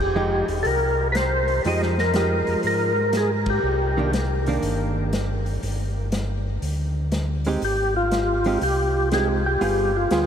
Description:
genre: soul jazz organ trio.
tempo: 120 BPM.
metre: 4/4.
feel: swing 66% on 8ths.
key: unclear.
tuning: A4 = 439 Hz.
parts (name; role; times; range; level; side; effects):
percussive tonewheel organ; melody; 0.0-4.1, 7.6-10.3 s; F4 to Eb5; -23 LUFS; equal; overdrive, chorus vibrato, slow rotary speaker, tape echo.
mellow tonewheel organ; bass; 0.0-10.3 s; E1 to Ab2; -25 LUFS; equal; slow rotary speaker.
hollow-body jazz guitar; accompaniment; 0.2-10.3 s; Eb3 to Ab4; -28 LUFS; right 2 dB; none.
vintage drum kit; drums; 0.5-10.3 s; hi-hat, kick drum, ride cymbal, snare drum; -31 LUFS; left 1 dB; none.
room: wet huge ambient reverb, RT60 8.9 s.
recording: dreamy mix soaked in reverb.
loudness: -20 LUFS.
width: side -8 dB against mid.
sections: 0.0-10.3 A section.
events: band accent 3.4.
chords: 0.0 Fm9; 3.6 Cm9; 5.6 G5; 7.6 Abmaj7; 9.6 G7b9.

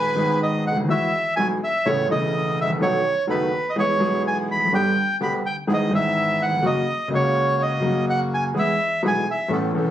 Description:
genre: tango.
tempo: 125 BPM.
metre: 4/4.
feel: rubato.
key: unclear.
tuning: A4 = 440 Hz.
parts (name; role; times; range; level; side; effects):
bandoneon; melody; 0.0-9.5 s; B4 to B5; -22 LUFS; right 1 dB; none.
warm grand piano; accompaniment; 0.0-9.9 s; D#1 to A4; -22 LUFS; left 1 dB; none.
bandoneon; stabs; 0.9-9.9 s; G#2 to A4; -32 LUFS; right 4 dB; none.
room: moderate booth ambience, RT60 0.3 s.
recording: recorded on a phone in the room, club reverb, compression.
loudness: -19 LUFS.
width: side -11 dB against mid.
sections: 0.0-9.9 A section.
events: none.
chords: 0.0 G#m; 0.9 Eadd9; 1.9 Aadd9; 2.8 B7; 3.8 E; 4.7 G; 5.7 E/G#; 6.6 F#; 8.5 E.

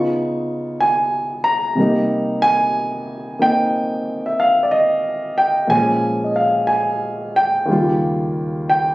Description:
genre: solo jazz.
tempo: 61 BPM.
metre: 4/4.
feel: swing 68% on 8ths, rubato.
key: C minor.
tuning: A4 = 440 Hz.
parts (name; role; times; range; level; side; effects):
warm grand piano; solo; 0.0-8.9 s; Eb2 to Db6; -16 LUFS; equal; none.
room: light reverb.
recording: recorded on a phone in the room, studio reverb.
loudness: -16 LUFS.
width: side -18 dB against mid.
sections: 0.0-8.9 A section.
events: none.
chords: 0.0 Db9; 1.8 Cm7; 5.7 Bbm7; 7.7 Eb9.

